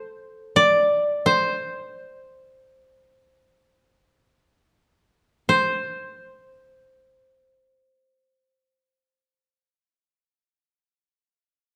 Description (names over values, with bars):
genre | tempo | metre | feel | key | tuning
japanese traditional, Japanese chamber music | free time | none | none | unclear | A4 = 440 Hz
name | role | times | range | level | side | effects
koto | solo | 0.0-9.7 s | A4 to D5 | -21 LUFS | equal | none
room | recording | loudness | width
moderate recital hall reverb, RT60 1.3 s | dark, warm production | -21 LUFS | mono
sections
0.0-5.5 A section; 5.5-11.8 B section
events
slowing down 0.0-5.5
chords
none